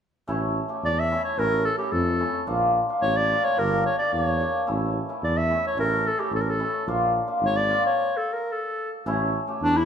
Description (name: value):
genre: klezmer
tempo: 109 BPM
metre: 2/4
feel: straight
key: A phrygian dominant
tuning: A4 = 439 Hz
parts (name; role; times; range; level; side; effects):
- cimbalom; accompaniment; 0.3-9.7 s; A3 to G4; -26 LUFS; left 1 dB; none
- breathy tuba; bass; 0.3-9.8 s; G1 to F2; -28 LUFS; right 1 dB; none
- warm clarinet; melody; 0.9-9.8 s; D4 to E5; -24 LUFS; equal; none
room: moderate large studio reverb, RT60 1.2 s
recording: band playing live in one room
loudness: -22 LUFS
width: side -8 dB against mid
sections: 0.3-9.1 A section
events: stop 8.0-9.1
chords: 0.3 A; 2.5 Bb; 3.6 Gm; 4.7 A; 6.9 Bb; 8.0 N.C.; 9.1 A